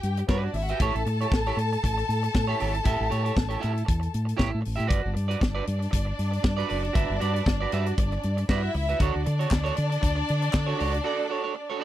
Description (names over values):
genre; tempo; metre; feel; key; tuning
disco; 117 BPM; 4/4; swing 56% on 16ths; unclear; A4 = 440 Hz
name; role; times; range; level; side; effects
warm studio violin section; second line; 0.0-11.8 s; B3 to A5; -31 LUFS; left 2 dB; none
fingered electric bass; bass; 0.0-11.0 s; F#1 to D3; -27 LUFS; equal; none
tight funk drum kit; drums; 0.0-11.0 s; hi-hat, kick drum, snare drum; -26 LUFS; equal; none
electric guitar at the edge of break-up; accompaniment; 0.2-11.8 s; E4 to E5; -30 LUFS; right 7 dB; lush chorus
group handclap; percussion; 9.5-10.7 s; none; -36 LUFS; left 5 dB; none
room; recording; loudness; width
small room ambience; dry, close 1970s-style studio recording; -23 LUFS; side -13 dB against mid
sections
0.0-4.9 A section; 4.9-11.8 B section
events
break 11.1-11.8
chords
0.0 Gmaj7; 0.8 A7; 4.9 Gmaj7; 9.0 Dmaj7